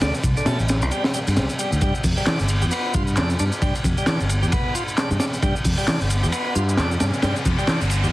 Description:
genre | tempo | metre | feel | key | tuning
breakbeat, breaks | 133 BPM | 4/4 | swing 58% on 16ths | unclear | A4 = 439 Hz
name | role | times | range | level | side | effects
bright tonewheel organ | riff | 0.0-8.1 s | C3 to G4 | -28 LUFS | equal | overdrive, stopped rotary speaker, dub echo
fingered electric bass | bass | 0.0-8.1 s | G1 to E3 | -22 LUFS | equal | none
crunchy breakbeat drum kit | drums | 0.0-8.0 s | hi-hat, kick drum, ride cymbal, snare drum | -22 LUFS | equal | none
electronic shaker and handclaps | drums | 0.0-8.1 s | none | -31 LUFS | equal | none
riser | sound effects | 6.3-8.1 s | none | -32 LUFS | equal | none
room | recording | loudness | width
light reverb, studio reverb | heavily compressed radio sound, vinyl crackle | -19 LUFS | side -17 dB against mid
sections
0.0-8.1 A section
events
riser 6.3-8.1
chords
0.0 D5; 1.8 G7

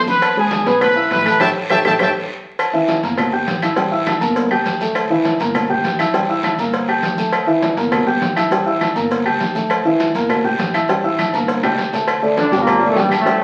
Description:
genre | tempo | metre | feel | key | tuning
latin, salsa | 202 BPM | 4/4 | straight | unclear | A4 = 439 Hz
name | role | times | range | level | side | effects
dark concert grand piano | accompaniment | 0.0-13.4 s | E3 to G6 | -20 LUFS | equal | none
upright bass | bass | 0.0-13.4 s | G1 to E2 | -30 LUFS | equal | none
bright trumpet section | melody | 0.1-2.1 s | G#4 to B5 | -19 LUFS | equal | none
congas | percussion | 0.1-13.4 s | none | -29 LUFS | equal | none
guiro | percussion | 0.1-13.4 s | none | -34 LUFS | equal | none
maracas | percussion | 0.1-13.4 s | none | -46 LUFS | equal | none
agogo bells and timbales | percussion | 0.2-13.4 s | none | -26 LUFS | equal | none
claves | percussion | 0.2-13.3 s | none | -29 LUFS | equal | none
cowbell | percussion | 0.2-13.4 s | none | -28 LUFS | equal | none
bright trombone section | melody | 12.4-13.4 s | G2 to D4 | -18 LUFS | equal | none
room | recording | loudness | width
wet large studio reverb, RT60 0.9 s | very old 78 rpm record, vinyl crackle | -17 LUFS | mono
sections
0.0-2.6 A section; 2.6-12.1 B section; 12.1-13.4 C section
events
drum fill 1.4-2.6, 11.2-12.1; band accent 1.4-2.6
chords
0.2 E; 1.4 A7; 2.6 Gm6; 3.2 A5; 4.4 Gm; 5.0 Dsus2; 5.5 A5; 6.7 Gm; 7.3 Dsus2; 7.9 A5; 9.1 Gm; 9.7 Dsus2; 10.3 A5; 11.5 Gm

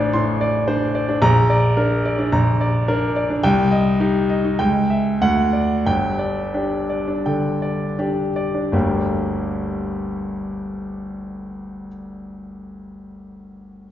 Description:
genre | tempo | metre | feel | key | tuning
classical, virtuoso piano study | 79-111 BPM | 4/4 | rubato | G minor | A4 = 440 Hz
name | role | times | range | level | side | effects
warm baby grand piano | solo | 0.0-13.9 s | G1 to C6 | -18 LUFS | equal | none
room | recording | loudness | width
wet recital hall reverb, RT60 1.4 s | heard from further back in the room, nothing above 7.7 kHz | -17 LUFS | side -11 dB against mid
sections
0.0-8.7 A section; 8.7-11.7 B section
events
slowing down 2.3-8.7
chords
0.0 D5/A; 1.2 Bb; 3.4 Cm; 4.6 C#dim; 5.2 D; 5.9 G5; 8.7 Gm

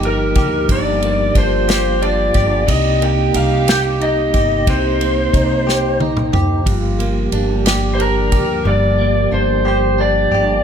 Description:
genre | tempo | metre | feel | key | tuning
six-eight pop ballad | 60 BPM (dotted quarters) | 6/8 | straight | unclear | A4 = 440 Hz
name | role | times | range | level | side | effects
warm French horn section | second line | 0.0-8.6 s | Eb4 to G4 | -24 LUFS | right 6 dB | none
direct-recorded clean electric guitar | accompaniment | 0.0-10.6 s | G2 to G4 | -21 LUFS | equal | double-tracked left and right
mellow tonewheel organ | sustained chords | 0.0-10.6 s | C3 to G4 | -23 LUFS | right 1 dB | chorus vibrato, stopped rotary speaker
upright bass | bass | 0.0-10.6 s | G1 to D2 | -20 LUFS | equal | none
unplugged drum kit | drums | 0.0-8.5 s | kick drum, ride cymbal, snare drum, toms | -20 LUFS | equal | none
lead guitar through a small cranked amp | melody | 0.1-10.6 s | Bb4 to G5 | -18 LUFS | left 1 dB | overdrive, tape echo
room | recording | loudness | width
small room ambience | none | -13 LUFS | side -8 dB against mid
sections
0.0-10.6 A section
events
drum fill 5.7-6.7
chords
0.0 Gm7; 2.7 Cm7; 6.7 Gm7

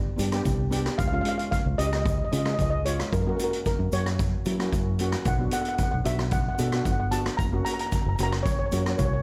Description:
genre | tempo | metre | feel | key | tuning
calypso | 112 BPM | 4/4 | straight | unclear | A4 = 440 Hz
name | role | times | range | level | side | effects
steel pan | melody | 0.0-9.2 s | A#4 to A#5 | -33 LUFS | equal | none
fingered electric bass | bass | 0.0-9.2 s | F#1 to F#3 | -30 LUFS | equal | none
steel pan | accompaniment | 0.2-9.1 s | G#3 to A4 | -34 LUFS | equal | none
street-band drum kit | drums | 0.2-9.1 s | hi-hat, kick drum, rim click | -31 LUFS | equal | none
tube shaker | percussion | 0.2-9.1 s | none | -48 LUFS | equal | none
room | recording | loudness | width
light reverb | dark, warm production | -26 LUFS | mono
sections
0.0-9.2 A section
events
none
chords
0.0 G; 1.0 C#; 3.1 F#; 5.3 Bm7; 7.4 F#

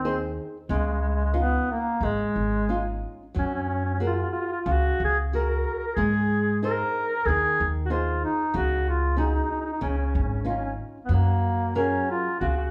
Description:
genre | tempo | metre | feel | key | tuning
italian folk, Italian serenade | 92 BPM | 4/4 | rubato | F# major | A4 = 440 Hz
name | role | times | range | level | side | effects
warm duduk | melody | 0.0-12.7 s | G#3 to A#4 | -29 LUFS | equal | none
flamenco guitar | accompaniment | 0.0-12.7 s | C#3 to B#4 | -32 LUFS | equal | none
upright bass | bass | 0.0-12.6 s | G#1 to G#2 | -29 LUFS | equal | none
room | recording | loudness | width
moderate large studio reverb, RT60 1.1 s | band playing live in one room | -25 LUFS | mono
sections
0.0-12.7 A section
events
none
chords
0.0 G#; 0.7 C#add9; 3.3 F#add9; 6.0 G#; 8.6 C#sus4; 9.8 C#add9; 11.1 F#add9

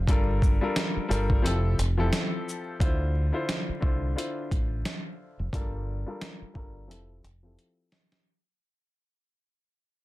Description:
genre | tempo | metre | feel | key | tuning
hip hop, boom-bap hip-hop | 88 BPM | 4/4 | swing 59% on 16ths | D minor | A4 = 439 Hz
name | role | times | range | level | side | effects
deep dub fingered electric bass | bass | 0.0-7.5 s | F1 to D2 | -27 LUFS | equal | none
warm grand piano | accompaniment | 0.1-8.2 s | D3 to C5 | -32 LUFS | left 2 dB | high-pass filter, low-pass filter, plate reverb
boom bap sampler-style drum kit | drums | 0.1-8.2 s | hi-hat, kick drum, shaker, snare drum | -27 LUFS | equal | none
room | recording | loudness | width
little or no reverb | dense, heavily limited modern master, vinyl crackle | -25 LUFS | side -18 dB against mid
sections
0.0-2.8 A section; 2.8-8.3 B section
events
kick muted 1.4-2.8; fade-out 2.8-8.3; filter sweep on grand piano 2.8-8.3; drum fill 6.9-8.3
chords
0.1 Gm7; 1.4 Fmaj9; 2.8 Dm9; 5.5 Gm7; 6.9 Fmaj9

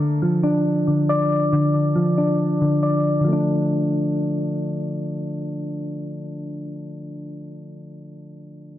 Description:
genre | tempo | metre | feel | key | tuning
hip hop | 138 BPM | 4/4 | half-time | D minor | A4 = 441 Hz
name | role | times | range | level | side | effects
soft electric-piano-like synth keys | accompaniment | 0.0-8.8 s | D3 to D5 | -20 LUFS | equal | chorus, low-pass filter
room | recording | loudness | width
moderate recital hall reverb, RT60 1.5 s, small room ambience | dense, heavily limited modern master | -19 LUFS | side -13 dB against mid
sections
0.0-3.3 A section; 3.3-6.7 B section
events
filter sweep on synth keys 0.0-3.3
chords
0.0 Dm

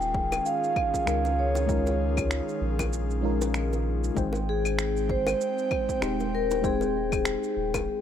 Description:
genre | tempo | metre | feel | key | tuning
sunset chillout | 97 BPM | 4/4 | swing 57% on 16ths | Ab major | A4 = 440 Hz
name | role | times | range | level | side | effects
vibraphone with medium mallets | melody | 0.0-8.0 s | Ab4 to G5 | -28 LUFS | equal | digital delay
mellow FM electric piano | accompaniment | 0.0-8.0 s | Ab3 to G5 | -32 LUFS | moving between left 6 dB and right 1 dB | chorus, auto-pan, low-pass filter, digital delay
airy breathy pad | sustained chords | 0.0-7.8 s | Eb3 to G5 | -34 LUFS | left 2 dB | chorus
round analog bass | bass | 0.0-7.9 s | Eb1 to Db2 | -30 LUFS | equal | none
electronic shaker, claves and finger snaps | drums | 0.0-7.9 s | none | -34 LUFS | left 1 dB | overdrive
electronic kick drum | drums | 0.1-7.8 s | none | -32 LUFS | equal | overdrive
bongos | percussion | 0.3-7.8 s | none | -35 LUFS | equal | none
room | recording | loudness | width
light reverb | none | -24 LUFS | side -9 dB against mid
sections
0.0-8.0 A section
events
none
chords
0.0 Eb9sus4; 4.2 Abmaj7

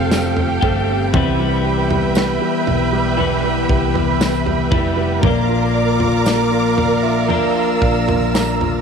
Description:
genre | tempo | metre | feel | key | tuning
pop ballad | 59 BPM | 4/4 | straight | C major | A4 = 440 Hz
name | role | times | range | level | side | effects
warm symphonic violin section | second line | 0.0-8.8 s | G4 to B5 | -23 LUFS | right 10 dB | none
warm grand piano | accompaniment | 0.0-8.8 s | E3 to Bb5 | -22 LUFS | right 10 dB | none
clear studio string section | sustained chords | 0.0-8.8 s | A4 to E6 | -23 LUFS | equal | none
twelve-string electric guitar | arpeggios | 0.0-8.8 s | Bb2 to G4 | -20 LUFS | left 10 dB | wide subtle chorus
hollow-body short-scale fingered electric bass | bass | 0.0-8.8 s | F1 to C2 | -22 LUFS | equal | none
modern studio drum kit | drums | 0.1-8.8 s | kick drum, snare drum, toms | -21 LUFS | equal | none
tambourine | percussion | 0.1-8.6 s | none | -33 LUFS | right 12 dB | none
room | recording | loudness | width
moderate echo chamber reverb, RT60 2.2 s | 1960s-style stereo with parts hard left and right | -14 LUFS | side -6 dB against mid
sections
0.0-8.8 A section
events
grand piano fill 6.3-8.8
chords
0.0 Fadd9; 1.1 Cmaj7; 5.2 Bb

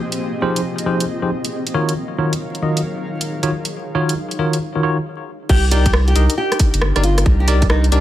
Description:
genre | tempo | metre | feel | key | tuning
UK garage, two-step garage | 136 BPM | 4/4 | swing 65% on 16ths | C minor | A4 = 437 Hz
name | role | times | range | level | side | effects
airy breathy pad | sustained chords | 0.0-8.0 s | Eb3 to F5 | -29 LUFS | left 1 dB | chorus, sidechain pumping
granular cloud pad | texture | 0.0-8.0 s | Bb3 to Bb5 | -29 LUFS | left 1 dB | built-in reverb, sidechain pumping
garage drum kit | drums | 0.1-8.0 s | crash cymbal, hi-hat, rim click | -22 LUFS | equal | overdrive, studio reverb
bell-like tine electric piano | stabs | 0.4-8.0 s | Eb3 to Eb5 | -20 LUFS | equal | fast stereo tremolo, low-pass filter, ping-pong delay
nylon-string guitar | melody | 5.5-8.0 s | D4 to G4 | -22 LUFS | equal | none
saturated sub bass | bass | 5.5-8.0 s | G1 to C2 | -14 LUFS | equal | sidechain pumping
electronic kick drum | drums | 5.5-7.7 s | none | -15 LUFS | equal | overdrive, studio reverb
room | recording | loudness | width
digital ambience | vinyl crackle | -16 LUFS | side -13 dB against mid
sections
0.0-5.5 A section; 5.5-8.0 B section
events
drop 5.5-8.0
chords
0.0 Fm7; 1.7 Ebm7; 5.5 Cm7

